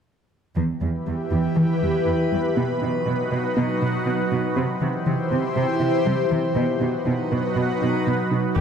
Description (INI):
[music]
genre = cinematic, hybrid orchestral and electronic film score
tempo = 120 BPM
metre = 4/4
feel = straight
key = E harmonic minor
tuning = A4 = 440 Hz
[part]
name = airy breathy pad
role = sustained chords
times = 0.6-8.6 s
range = E3 to C5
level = -23 LUFS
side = left 1 dB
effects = chorus, phaser
[part]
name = analog pluck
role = arpeggios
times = 0.6-8.6 s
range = C3 to B4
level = -28 LUFS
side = left 1 dB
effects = chorus, digital delay
[part]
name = rich symphonic cello section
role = bass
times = 0.6-8.6 s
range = E2 to C3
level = -25 LUFS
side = right 3 dB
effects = none
[part]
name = warm symphonic viola section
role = accompaniment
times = 8.6 s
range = B3 to G4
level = -27 LUFS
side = right 3 dB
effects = none
[part]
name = smooth gliding synth bass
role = riff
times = 8.6 s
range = E2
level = -20 LUFS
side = left 5 dB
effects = none
[part]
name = taiko ensemble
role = drums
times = 8.6 s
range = none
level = -24 LUFS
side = equal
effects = none
[sound]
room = wet concert hall reverb, RT60 2.3 s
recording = none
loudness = -20 LUFS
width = side -7 dB against mid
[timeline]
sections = 0.6-8.6 A section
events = none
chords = 0.6 Em; 2.6 B; 4.6 C; 6.6 B